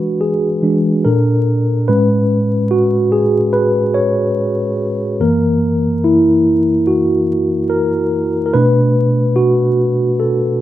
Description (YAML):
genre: R&B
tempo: 72 BPM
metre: 4/4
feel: swing 55% on 16ths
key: A major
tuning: A4 = 439 Hz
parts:
  - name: mellow tine electric piano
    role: solo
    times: 0.0-10.6 s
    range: F#2 to C#5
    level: -12 LUFS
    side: equal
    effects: medium stereo tremolo
room: moderate studio reverb, RT60 0.5 s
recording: rough home demo mix, vinyl crackle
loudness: -12 LUFS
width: side -13 dB against mid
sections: 0.0-10.6 A section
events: tine electric piano solo 0.0-10.6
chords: 0.0 E9; 1.0 Bbmaj7; 1.9 Amaj9; 5.2 F#7; 8.5 Bm7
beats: 0.21 1.05 | 1.88 2.71 3.55 4.38 | 5.21 6.05 6.88 7.71 | 8.55 9.38 10.21